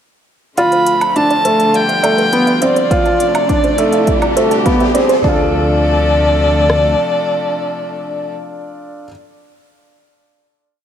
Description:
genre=piano and strings electronica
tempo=103 BPM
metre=4/4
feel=straight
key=D dorian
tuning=A4 = 441 Hz
part: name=warm violin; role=melody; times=0.6-8.3 s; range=D5 to B5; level=-16 LUFS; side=equal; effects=tape echo
part: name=clear string quartet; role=sustained chords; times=0.6-8.3 s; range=C3 to A4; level=-22 LUFS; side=left 1 dB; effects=none
part: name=soft round pluck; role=arpeggios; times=0.6-5.5 s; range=B4 to A5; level=-22 LUFS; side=right 5 dB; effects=chorus, sidechain pumping, tape echo
part: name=felt-muted upright piano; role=riff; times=0.6-9.1 s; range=A3 to D5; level=-16 LUFS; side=equal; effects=tape echo
part: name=dark detuned saw bass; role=bass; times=0.6-6.9 s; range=D2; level=-22 LUFS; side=equal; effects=sidechain pumping, high-pass filter
part: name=electronic hi-hat and woodblock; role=drums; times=0.6-5.2 s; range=none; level=-24 LUFS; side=right 1 dB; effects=overdrive, high-pass filter on hats, high-pass filter on perc, high-pass filter on room
part: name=riser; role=sound effects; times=2.7-5.2 s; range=none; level=-22 LUFS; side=equal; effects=none
part: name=deep house drum kit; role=drums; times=2.9-6.8 s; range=kick drum, rim click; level=-18 LUFS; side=equal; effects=none
room=moderate echo chamber reverb, RT60 1.7 s, digital ambience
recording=none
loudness=-11 LUFS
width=side -9 dB against mid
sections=0.6-5.2 build; 5.2-7.6 final chord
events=build-up 0.6-5.2; filter sweep on synth arpeggio sound 0.6-5.2; riser 2.7-5.2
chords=0.6 Dm7; 1.7 G7/D; 2.9 Dm7; 4.1 Csus2/D; 5.2 Dm7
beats=| 0.58 1.16 1.74 2.33 | 2.91 3.49 4.07 4.66 | 5.24 5.82 6.40 6.99

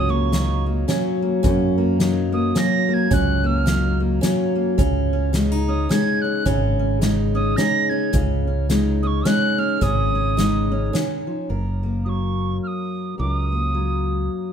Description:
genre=acoustic folk duo or small band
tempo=107 BPM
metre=3/4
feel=swing 58% on 8ths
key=F# major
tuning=A4 = 440 Hz
part: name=mellow wooden whistle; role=melody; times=0.0-14.5 s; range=C#6 to A#6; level=-25 LUFS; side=right 3 dB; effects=none
part: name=fingerpicked steel-string acoustic guitar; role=accompaniment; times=0.0-14.5 s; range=F#2 to A#4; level=-23 LUFS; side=left 2 dB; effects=none
part: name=picked old ladder-braced acoustic guitar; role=arpeggios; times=0.0-11.5 s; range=C#4 to D#4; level=-27 LUFS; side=right 6 dB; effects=none
part: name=fingered electric bass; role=bass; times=0.0-14.3 s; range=F#1 to F#2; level=-22 LUFS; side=equal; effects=none
part: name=soft-mallet drum kit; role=drums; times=0.3-11.1 s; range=hi-hat, kick drum, snare drum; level=-25 LUFS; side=equal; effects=none
room=moderate studio reverb, RT60 0.6 s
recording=none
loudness=-18 LUFS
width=side -8 dB against mid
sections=0.0-11.5 A section; 11.5-14.5 B section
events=none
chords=0.0 F#; 4.8 C#sus2; 11.5 F#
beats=0.32 0.88 | 1.44 2.00 2.55 | 3.11 3.67 4.23 | 4.79 5.34 5.90 | 6.46 7.02 7.58 | 8.14 8.70 9.26 | 9.82 10.38 10.94 | 11.50 12.06 12.63 | 13.19 13.75 14.32

